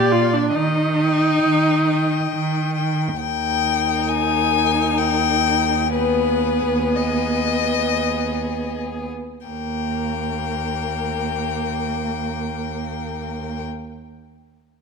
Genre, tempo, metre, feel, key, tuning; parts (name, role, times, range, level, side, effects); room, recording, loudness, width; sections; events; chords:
classical, slow romantic movement for string quartet; 43-72 BPM; 3/4; rubato; Eb major; A4 = 440 Hz
rich violin; melody; 0.0-13.6 s; Cb5 to Ab5; -23 LUFS; left 13 dB
rich violin; second line; 0.0-13.6 s; Ab4 to Eb5; -30 LUFS; left 6 dB
rich viola; accompaniment; 0.0-13.6 s; Bb3 to G4; -23 LUFS; right 1 dB
clear cello; bass; 0.0-13.6 s; Eb2 to Eb3; -24 LUFS; right 4 dB
moderate scoring stage reverb, RT60 1.9 s; -18 LUFS; side -5 dB against mid
0.0-3.2 A section; 3.2-9.5 B section; 9.5-13.4 C section
slowing down 1.9-9.5
0.0 Bb; 0.5 Eb; 5.9 Abm/Eb; 9.5 Eb